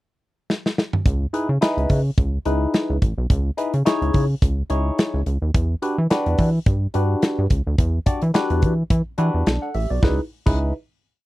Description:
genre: early-eighties boogie funk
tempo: 107 BPM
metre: 4/4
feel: swing 56% on 16ths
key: C# minor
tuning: A4 = 440 Hz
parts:
  - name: modern studio drum kit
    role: drums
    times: 0.5-10.6 s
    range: crash cymbal, hi-hat, kick drum, snare drum, toms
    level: -20 LUFS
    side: equal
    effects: none
  - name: rubbery square bass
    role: bass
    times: 1.1-10.7 s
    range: A1 to E3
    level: -20 LUFS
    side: equal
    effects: none
  - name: barky tine electric piano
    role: accompaniment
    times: 1.3-10.7 s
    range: D4 to F#5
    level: -23 LUFS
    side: left 1 dB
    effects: overdrive, phaser
room: little or no reverb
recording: dry, close 1970s-style studio recording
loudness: -18 LUFS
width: side -18 dB against mid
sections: 0.0-1.1 pickup bar; 1.1-10.0 verse; 10.0-11.3 final chord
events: drum fill 0.5-1.1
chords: 0.0 N.C.; 1.1 C#m9; 5.5 Em9; 10.0 C#m9

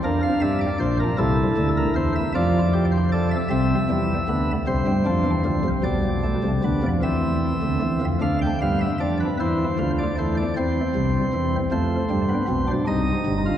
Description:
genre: classical, baroque-style 3-part fugue for pipe organ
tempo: 52 BPM (dotted quarters)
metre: 6/8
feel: straight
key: unclear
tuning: A4 = 439 Hz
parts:
  - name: chamber organ, sparkling flutes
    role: solo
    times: 0.0-13.6 s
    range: G1 to G5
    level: -20 LUFS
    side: equal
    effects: none
room: wet cathedral reverb, RT60 5.8 s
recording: heard from further back in the room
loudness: -20 LUFS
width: side -10 dB against mid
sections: 0.0-8.2 A section; 8.2-13.6 B section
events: none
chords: 0.1 Gm7/F; 1.2 C7; 2.4 F; 3.5 C; 4.7 Dm7/C; 5.8 G7/B; 7.0 C/E; 8.2 G7/D; 9.4 C; 11.7 F; 12.9 Cm

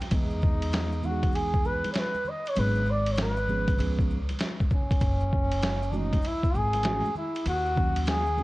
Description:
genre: hip hop, jazz-hop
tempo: 98 BPM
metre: 4/4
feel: swing 66% on 16ths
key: unclear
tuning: A4 = 440 Hz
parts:
  - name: mellow tine electric piano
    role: accompaniment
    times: 0.0-8.4 s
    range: Eb3 to G5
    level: -33 LUFS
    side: right 2 dB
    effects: phaser
  - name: trip hop sampler-style drum kit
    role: drums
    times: 0.0-8.3 s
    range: hi-hat, kick drum, ride cymbal, snare drum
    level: -28 LUFS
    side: equal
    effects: none
  - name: maracas and congas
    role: percussion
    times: 0.0-8.4 s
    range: none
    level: -42 LUFS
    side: left 2 dB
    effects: none
  - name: mellow flugelhorn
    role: melody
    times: 0.1-8.4 s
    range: Db4 to D#5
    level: -30 LUFS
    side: equal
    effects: none
  - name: upright bass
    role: bass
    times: 0.1-8.4 s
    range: Gb1 to E2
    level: -29 LUFS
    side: equal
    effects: none
room: small room ambience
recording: worn, warbling old tape, cassette tape, warbly pitch drift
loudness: -24 LUFS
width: side -19 dB against mid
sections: 0.0-8.4 A section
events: none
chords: 0.1 Emaj7; 2.6 Abm7b5; 3.8 Db7; 5.0 Gbm9; 7.5 Ebm7

